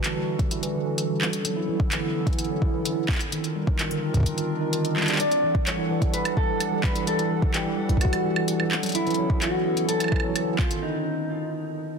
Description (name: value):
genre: IDM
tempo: 128 BPM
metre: 4/4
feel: straight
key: E dorian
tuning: A4 = 442 Hz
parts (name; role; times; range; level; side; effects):
- warbly tape-like pad; sustained chords; 0.0-10.8 s; D3 to F#5; -30 LUFS; equal; chorus, built-in reverb, vintage 12-bit sampler grit, sidechain pumping
- mellow tine electric piano; arpeggios; 0.0-10.8 s; D3 to E4; -28 LUFS; right 2 dB; medium stereo tremolo, low-pass filter, tape echo
- organic electronic drum kit; drums; 0.0-10.8 s; handclaps, hi-hat, woodblock; -29 LUFS; equal; overdrive, small room ambience, tape echo
- electronic kick drum; drums; 0.4-10.7 s; none; -24 LUFS; equal; overdrive, small room ambience
- mellow electric guitar; melody; 5.2-12.0 s; Eb4 to D5; -27 LUFS; left 1 dB; wide subtle chorus, digital delay
room: light reverb, digital ambience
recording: dense, heavily limited modern master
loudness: -22 LUFS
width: side -5 dB against mid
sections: 0.0-12.0 A section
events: filter sweep on tine electric piano 0.0-12.0; break 10.8-12.0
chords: 0.0 Em11; 1.2 Bm11; 3.1 Cm11; 5.2 Em11; 8.7 Bm11; 10.6 Cm11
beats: 0.04 0.51 0.98 | 1.45 1.92 2.38 2.85 | 3.32 3.79 4.26 4.73 | 5.20 5.67 6.13 6.60 | 7.07 7.54 8.01 8.48 | 8.95 9.42 9.88 10.35 | 10.82 11.29 11.76